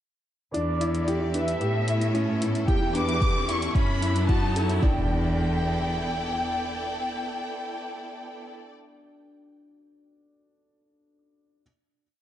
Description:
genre	piano and strings electronica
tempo	112 BPM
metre	4/4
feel	straight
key	E dorian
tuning	A4 = 440 Hz
part	warm symphonic violin section	melody	0.5-8.5 s	D5 to D6	-31 LUFS	left 1 dB	low-pass filter
part	clear symphonic string section	sustained chords	0.5-8.7 s	B3 to D5	-36 LUFS	equal	sidechain pumping
part	soft round pluck	arpeggios	0.5-5.1 s	C#4 to E5	-34 LUFS	left 1 dB	chorus, sidechain pumping, digital delay
part	clear grand piano	riff	0.5-11.6 s	C#4 to B4	-32 LUFS	equal	digital delay
part	clear studio cello section	bass	0.5-6.4 s	E2 to A2	-27 LUFS	equal	sidechain pumping
part	electronic hi-hat	drums	0.5-4.8 s	none	-39 LUFS	right 1 dB	high-pass filter on hats
part	riser and impact	sound effects	2.4-8.5 s	none	-35 LUFS	equal	none
part	electronic kick drum	drums	2.7-4.9 s	none	-24 LUFS	equal	none
room	moderate lush hall reverb, RT60 1.8 s, small room ambience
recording	dark, warm production, nothing above 10.4 kHz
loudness	-23 LUFS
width	side -12 dB against mid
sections	0.5-4.8 build; 4.8-9.1 final chord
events	build-up 0.5-4.8; filter sweep on violin section 0.5-4.8; riser 2.4-4.8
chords	0.5 Em7; 1.6 A7; 2.7 Em7; 3.8 F#m7; 4.8 Em7

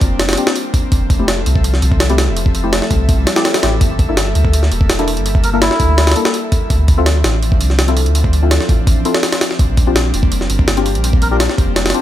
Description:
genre	drum and bass, jungle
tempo	166 BPM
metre	4/4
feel	straight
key	G dorian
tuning	A4 = 440 Hz
part	airy breathy pad	sustained chords	0.0-12.0 s	F3 to E5	-23 LUFS	left 1 dB	chorus
part	deep mellow chord stab	stabs	0.0-12.0 s	A3 to A4	-21 LUFS	left 4 dB	chorus, dub echo
part	soft dub sub bass	bass	0.0-11.9 s	E1 to D2	-16 LUFS	equal	none
part	jungle sampler-style drum kit	drums	0.0-12.0 s	hi-hat, kick drum, snare drum	-14 LUFS	equal	studio reverb
part	swell	sound effects	3.2-3.8 s	none	-26 LUFS	left 3 dB	none
part	melodica	melody	5.4-6.1, 11.2-11.4 s	E4 to Bb4	-22 LUFS	equal	dub echo
room	digital ambience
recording	none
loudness	-12 LUFS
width	side -12 dB against mid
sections	0.0-12.0 A section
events	swell 3.2-3.8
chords	0.0 Bb69; 0.9 Fmaj7; 3.8 Gm69; 6.7 Dm9; 9.6 Bb69

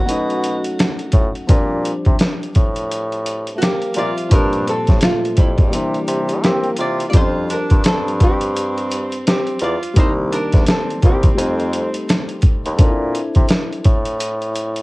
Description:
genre	hip hop, jazz-hop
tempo	85 BPM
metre	4/4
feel	swing 61% on 16ths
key	F major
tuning	A4 = 440 Hz
part	archtop guitar, miked and amplified	melody	0.0-12.4 s	E4 to D5	-23 LUFS	equal	none
part	breathy tenor saxophone	second line	0.0-12.4 s	G3 to Gb4	-26 LUFS	right 1 dB	cassette tape, tape echo
part	warm upright piano	accompaniment	0.0-14.8 s	Bb2 to E5	-25 LUFS	left 2 dB	cassette tape
part	clear bassoon	bass	0.1-14.8 s	C2 to C4	-22 LUFS	equal	none
part	boom bap sampler-style drum kit	drums	0.1-14.8 s	hi-hat, kick drum, snare drum	-15 LUFS	equal	cassette tape
room	little or no reverb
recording	home recording on cassette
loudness	-15 LUFS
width	side -22 dB against mid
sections	0.0-7.1 A section; 7.1-14.8 A section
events	break 5.7-7.1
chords	0.1 B9; 1.5 Bb69; 4.3 Gm11; 5.7 C9; 7.1 Fsus2; 10.0 Cm9; 11.4 F9; 12.8 Bbmaj9#11

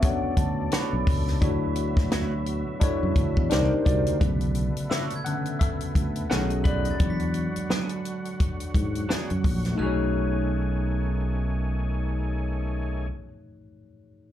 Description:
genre	lush 1970s-style soul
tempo	86 BPM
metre	4/4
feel	swing 58% on 16ths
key	B dorian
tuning	A4 = 443 Hz
part	vibraphone with soft mallets	melody	0.0-3.5 s	F#5 to B5	-35 LUFS	moving between right 1 dB and right 11 dB	auto-pan, plate reverb, slapback echo
part	tine electric piano	accompaniment	0.0-14.3 s	C#3 to B5	-30 LUFS	left 3 dB	phaser, plate reverb, slapback echo
part	overdriven tonewheel organ	sustained chords	0.0-13.1 s	B2 to G#4	-36 LUFS	right 1 dB	chorus vibrato, lush chorus
part	compact cocktail drum kit	drums	0.0-9.8 s	hi-hat, kick drum, snare drum	-25 LUFS	equal	none
part	fingered electric bass	bass	0.2-13.1 s	A#1 to G#2	-26 LUFS	equal	none
part	semi-hollow electric guitar	riff	0.7-13.3 s	F#3 to D5	-34 LUFS	right 6 dB	analog chorus, slapback echo
part	glockenspiel with brass mallets	texture	4.9-13.1 s	E6 to B6	-41 LUFS	left 2 dB	none
room	little or no reverb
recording	live gig heard through the venue's PA, club reverb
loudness	-23 LUFS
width	side -11 dB against mid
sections	0.0-4.2 A section; 4.2-9.8 B section; 9.8-12.6 C section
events	tine electric piano solo 4.2-9.8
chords	0.0 Bm9; 1.4 Dmaj9; 3.5 Cm9; 4.2 Bm9; 6.3 B13; 7.0 E9; 9.8 B13

